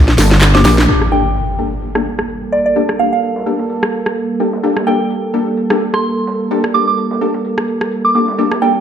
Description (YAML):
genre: bass house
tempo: 128 BPM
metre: 4/4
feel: swing 56% on 16ths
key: G minor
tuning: A4 = 444 Hz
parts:
  - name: wobble bass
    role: bass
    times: 0.0-0.9 s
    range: G1 to Bb1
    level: -10 LUFS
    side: equal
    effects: chorus, overdrive
  - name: house drum kit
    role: drums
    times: 0.1-8.6 s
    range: handclaps, hi-hat, rim click, snare drum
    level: -16 LUFS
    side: equal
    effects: overdrive, low-pass filter on hats, studio reverb, low-pass filter on snare
  - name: tambourine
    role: percussion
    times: 0.1-0.9 s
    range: none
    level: -29 LUFS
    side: right 2 dB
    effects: none
  - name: orchestra-hit-like synth stab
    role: stabs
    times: 0.2-8.7 s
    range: Bb3 to C5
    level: -18 LUFS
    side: left 4 dB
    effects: built-in reverb, tape echo
  - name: dusty soul sampler-style drum kit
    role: drums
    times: 0.2-8.7 s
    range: hi-hat, snare drum, tambourine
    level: -34 LUFS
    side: equal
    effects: none
  - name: soft synth bell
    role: melody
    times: 0.5-8.8 s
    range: D5 to D6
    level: -17 LUFS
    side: right 3 dB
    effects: chorus, phaser, tape echo
  - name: sweeping resonant pad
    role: sustained chords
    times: 0.9-8.8 s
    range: G3 to A4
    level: -19 LUFS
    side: right 3 dB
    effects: chorus
  - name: impact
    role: sound effects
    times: 0.9-2.8 s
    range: none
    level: -20 LUFS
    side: equal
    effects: none
room: moderate digital room reverb, RT60 1.4 s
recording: none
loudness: -12 LUFS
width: side -9 dB against mid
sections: 0.9-8.8 A section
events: drum fill 0.0-0.9; band accent 0.8; impact 0.9-2.8; filter sweep on synth stab 0.9-8.8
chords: 0.0 Gmadd9